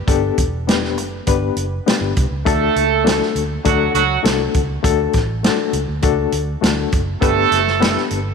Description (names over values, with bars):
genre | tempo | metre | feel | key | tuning
uptempo 1960s-style soul | 101 BPM | 4/4 | straight | D major | A4 = 440 Hz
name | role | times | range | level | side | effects
barky reed electric piano | accompaniment | 0.1-8.2 s | A3 to B4 | -20 LUFS | left 12 dB | overdrive, fast tremolo
vintage muted fingered electric bass | bass | 0.1-8.3 s | E1 to D2 | -23 LUFS | right 1 dB | none
vintage drum kit | drums | 0.1-8.2 s | hi-hat, kick drum, snare drum | -19 LUFS | right 1 dB | none
warm horn section | second line | 2.5-8.1 s | F#3 to A4 | -18 LUFS | right 9 dB | none
room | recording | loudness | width
moderate echo chamber reverb, RT60 2.2 s | 1960s-style stereo with parts hard left and right | -15 LUFS | side -5 dB against mid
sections
0.0-8.3 A section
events
none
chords
0.0 G; 2.5 D; 7.2 G